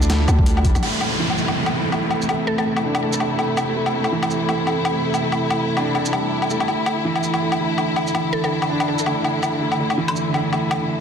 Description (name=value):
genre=half-time drum and bass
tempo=164 BPM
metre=4/4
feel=swing 59% on 16ths, half-time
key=A minor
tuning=A4 = 440 Hz
part: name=warm symphonic string section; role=sustained chords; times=0.0-11.0 s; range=C3 to E4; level=-23 LUFS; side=left 1 dB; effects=sidechain pumping, low-pass filter
part: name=felt-muted upright piano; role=arpeggios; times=0.0-11.0 s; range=E3 to A4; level=-24 LUFS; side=right 2 dB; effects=low-pass filter, ping-pong delay
part: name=growling 808-style bass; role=bass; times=0.0-0.8 s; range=A1 to D2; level=-17 LUFS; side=equal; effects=none
part: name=boom bap sampler-style drum kit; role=drums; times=0.0-10.8 s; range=crash cymbal, hi-hat, shaker, snare drum, woodblock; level=-24 LUFS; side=left 1 dB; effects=overdrive
part: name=electronic kick drum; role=drums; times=0.4-0.7 s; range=none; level=-19 LUFS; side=equal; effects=overdrive
part: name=downlifter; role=sound effects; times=0.8-3.8 s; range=none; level=-26 LUFS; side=left 1 dB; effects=none
part: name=mallet-like synth pluck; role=melody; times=2.5-2.6, 8.3-8.5 s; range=A4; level=-30 LUFS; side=left 1 dB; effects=chorus, ping-pong delay
room=moderate lush hall reverb, RT60 2.1 s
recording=dense, heavily limited modern master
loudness=-18 LUFS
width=side -7 dB against mid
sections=0.8-11.0 A section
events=filter sweep on string section 0.8-11.0; filter sweep on felt piano 0.8-11.0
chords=0.0 Dmadd9; 0.8 Am; 6.7 Dsus2